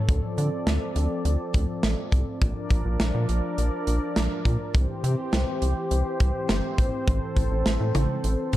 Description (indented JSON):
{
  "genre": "synth-pop",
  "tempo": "103 BPM",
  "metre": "4/4",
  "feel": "straight",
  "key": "D minor",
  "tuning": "A4 = 440 Hz",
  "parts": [
    { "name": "brassy analog pad", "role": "sustained chords", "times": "0.0-8.6 s", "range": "E3 to D5", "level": "-29 LUFS", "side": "equal", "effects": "chorus" },
    { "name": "rubbery square bass", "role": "bass", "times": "0.1-8.6 s", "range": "G1 to D3", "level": "-24 LUFS", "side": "equal", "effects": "none" },
    { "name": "modern studio drum kit", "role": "drums", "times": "0.1-8.6 s", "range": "hi-hat, kick drum, snare drum, toms", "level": "-26 LUFS", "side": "equal", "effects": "none" }
  ],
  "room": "light reverb",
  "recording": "dark, warm production",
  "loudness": "-22 LUFS",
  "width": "side -14 dB against mid",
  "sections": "0.0-8.6 A section",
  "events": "none",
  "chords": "0.1 Dm7; 2.4 Bb; 4.7 C; 7.1 Am"
}